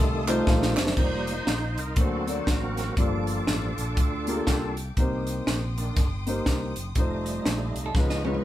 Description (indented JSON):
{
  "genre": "uptempo gospel",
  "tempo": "120 BPM",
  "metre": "4/4",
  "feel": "swing 61% on 8ths",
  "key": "unclear",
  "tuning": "A4 = 436 Hz",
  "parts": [
    { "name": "bright tonewheel organ", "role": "sustained chords", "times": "0.0-8.4 s", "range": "Eb3 to C5", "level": "-31 LUFS", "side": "right 1 dB", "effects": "fast rotary speaker, chorus vibrato" },
    { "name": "warm symphonic string section", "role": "sustained chords", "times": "0.0-8.4 s", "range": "F5 to Eb6", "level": "-41 LUFS", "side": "left 3 dB", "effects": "none" },
    { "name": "fingered electric bass", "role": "bass", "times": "0.0-8.4 s", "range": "F1 to D2", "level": "-31 LUFS", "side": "equal", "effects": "none" },
    { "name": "dark grand piano", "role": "accompaniment", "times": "0.3-8.4 s", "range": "G2 to Bb5", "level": "-30 LUFS", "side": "left 1 dB", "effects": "none" },
    { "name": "crisp fusion drum kit", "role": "drums", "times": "0.3-8.4 s", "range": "crash cymbal, hi-hat, kick drum, snare drum, toms", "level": "-26 LUFS", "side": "equal", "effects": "none" },
    { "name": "group handclap", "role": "percussion", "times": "0.3-0.9 s", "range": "none", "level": "-34 LUFS", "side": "right 3 dB", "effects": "none" },
    { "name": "clean electric guitar", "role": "second line", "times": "7.9-8.4 s", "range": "A4 to Eb5", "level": "-34 LUFS", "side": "right 4 dB", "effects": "none" }
  ],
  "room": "light reverb",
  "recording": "band playing live in one room",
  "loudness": "-23 LUFS",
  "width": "side -13 dB against mid",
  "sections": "1.0-8.4 A section",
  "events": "drum fill 0.5-1.0, 8.0-8.4; tonewheel organ solo 1.0-8.4; grand piano fill 4.0-5.0",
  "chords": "0.0 F7; 1.0 F7sus4; 2.0 D7b13; 3.0 Gm7; 5.0 Cm7; 7.0 F7"
}